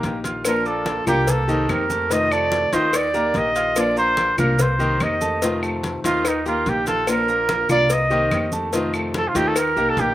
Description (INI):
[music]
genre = latin, Cuban son and guajira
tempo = 145 BPM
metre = 4/4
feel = straight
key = Bb major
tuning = A4 = 440 Hz
[part]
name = nylon-string guitar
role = accompaniment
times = 0.0-10.1 s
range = C3 to G4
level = -26 LUFS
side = left 2 dB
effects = slapback echo
[part]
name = bright grand piano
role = arpeggios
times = 0.0-10.1 s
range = Eb3 to F6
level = -26 LUFS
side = right 1 dB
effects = slapback echo
[part]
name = upright bass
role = bass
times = 0.0-10.1 s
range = Bb1 to F2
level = -27 LUFS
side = equal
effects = none
[part]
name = congas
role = percussion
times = 0.0-10.1 s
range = none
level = -30 LUFS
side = equal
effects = none
[part]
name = cowbell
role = percussion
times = 0.0-10.1 s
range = none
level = -28 LUFS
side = left 5 dB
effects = none
[part]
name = maracas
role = percussion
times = 0.0-10.1 s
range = none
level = -33 LUFS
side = right 4 dB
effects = none
[part]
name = claves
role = percussion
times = 0.4-9.8 s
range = none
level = -32 LUFS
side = left 2 dB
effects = none
[part]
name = warm trumpet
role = melody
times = 0.5-10.1 s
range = Eb4 to Eb5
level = -20 LUFS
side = right 1 dB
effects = none
[sound]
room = little or no reverb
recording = recorded outdoors, with no room sound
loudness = -18 LUFS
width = side -14 dB against mid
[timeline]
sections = 0.0-10.1 A section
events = trumpet solo 0.0-10.1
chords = 0.4 Bb; 1.3 Cm7; 2.1 F7; 2.9 Eb; 3.8 Bb; 4.6 Cm7; 5.4 F7; 6.2 Eb; 7.1 Bb; 7.9 Cm7; 8.7 F7; 9.6 Eb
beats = 0.03 | 0.45 0.86 1.28 1.69 | 2.10 2.52 2.93 3.35 | 3.76 4.18 4.59 5.00 | 5.42 5.83 6.25 6.66 | 7.08 7.49 7.90 8.32 | 8.73 9.15 9.56 9.98